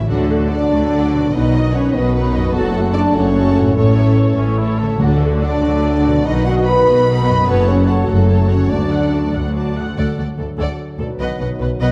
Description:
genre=cinematic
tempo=98 BPM (dotted quarters)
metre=6/8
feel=straight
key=D major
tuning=A4 = 440 Hz
part: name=warm symphonic violin section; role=melody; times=0.0-11.9 s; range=C#5 to A5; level=-36 LUFS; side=equal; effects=none
part: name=mellow hollow large flute ensemble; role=second line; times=0.0-9.3 s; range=F#4 to B5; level=-28 LUFS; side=equal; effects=none
part: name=warm symphonic violin section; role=second line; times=0.0-11.9 s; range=F#4 to B5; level=-29 LUFS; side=equal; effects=none
part: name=concert harp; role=arpeggios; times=0.0-11.9 s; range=F#2 to C#5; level=-26 LUFS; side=equal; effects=none
part: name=rich symphonic viola section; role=accompaniment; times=0.1-11.9 s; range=D4 to F#5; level=-29 LUFS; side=equal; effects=none
part: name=clear trombone section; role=sustained chords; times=0.1-11.9 s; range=C#3 to A3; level=-28 LUFS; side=equal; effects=none
part: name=dark French horn section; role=sustained chords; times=0.1-9.3 s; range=F#3 to B4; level=-20 LUFS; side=equal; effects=none
part: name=clear symphonic double bass section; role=bass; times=0.1-11.9 s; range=F#1 to D2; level=-22 LUFS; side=equal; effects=none
part: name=rich symphonic cello section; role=bass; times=0.1-11.9 s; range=D2 to D3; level=-23 LUFS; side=equal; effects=none
part: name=mellow cor anglais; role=second line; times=4.4-5.0 s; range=C#4 to A4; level=-30 LUFS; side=equal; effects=none
part: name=timpani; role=percussion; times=5.0-5.6 s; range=D3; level=-22 LUFS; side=equal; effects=none
room=wet scoring stage reverb, RT60 1.7 s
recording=dark, warm production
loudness=-16 LUFS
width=mono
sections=0.1-10.0 A section; 10.0-11.9 B section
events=none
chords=0.1 D; 1.3 B; 2.5 F#m; 3.8 A; 5.0 D; 6.3 B; 7.5 F#m; 8.7 D; 11.2 B

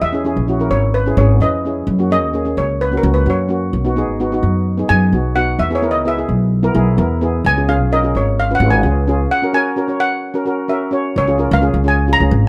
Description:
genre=calypso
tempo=129 BPM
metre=4/4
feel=straight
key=unclear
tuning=A4 = 441 Hz
part: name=steel pan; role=melody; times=0.0-12.5 s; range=A#4 to Bb5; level=-20 LUFS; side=equal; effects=none
part: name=upright bass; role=bass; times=0.0-12.5 s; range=G#1 to F#2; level=-18 LUFS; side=equal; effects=none
part: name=steel pan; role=accompaniment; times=0.1-12.4 s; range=A#3 to C#5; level=-21 LUFS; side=equal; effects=none
room=little or no reverb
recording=close, detailed microphones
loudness=-16 LUFS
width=mono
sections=0.0-11.2 A section; 11.2-12.5 B section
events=steel pan solo 0.0-11.2; break 9.3-11.2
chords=0.0 C#m; 1.9 F#; 3.7 B; 5.6 E; 7.5 C#7; 9.3 F#; 11.2 Db

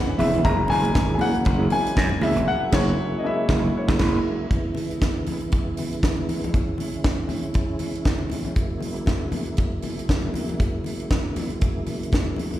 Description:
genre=disco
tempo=118 BPM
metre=4/4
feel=swing 56% on 16ths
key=C# dorian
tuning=A4 = 440 Hz
part: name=clear grand piano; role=accompaniment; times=0.0-4.5 s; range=E3 to B5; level=-24 LUFS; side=left 2 dB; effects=slapback echo
part: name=tonewheel organ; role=sustained chords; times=0.0-12.6 s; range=C#3 to E4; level=-28 LUFS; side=right 2 dB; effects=chorus vibrato, slow rotary speaker
part: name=mellow electric guitar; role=accompaniment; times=0.1-4.2 s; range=A#3 to G#4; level=-26 LUFS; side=right 4 dB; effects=slapback echo
part: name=congas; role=percussion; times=0.1-12.6 s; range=none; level=-31 LUFS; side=left 3 dB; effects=none
part: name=gritty slap bass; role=bass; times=0.2-4.2 s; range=E#1 to F#2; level=-24 LUFS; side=equal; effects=overdrive
part: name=tight funk drum kit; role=drums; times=0.2-12.6 s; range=crash cymbal, hi-hat, kick drum, snare drum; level=-24 LUFS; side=equal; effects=none
room=light reverb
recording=live gig heard through the venue's PA, recital hall reverb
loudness=-21 LUFS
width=side -13 dB against mid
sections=0.0-4.5 A section; 4.5-12.6 B section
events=grand piano solo 0.0-4.5; band accent 2.5-4.5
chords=0.4 F#9; 4.5 C#m7; 8.6 F#9

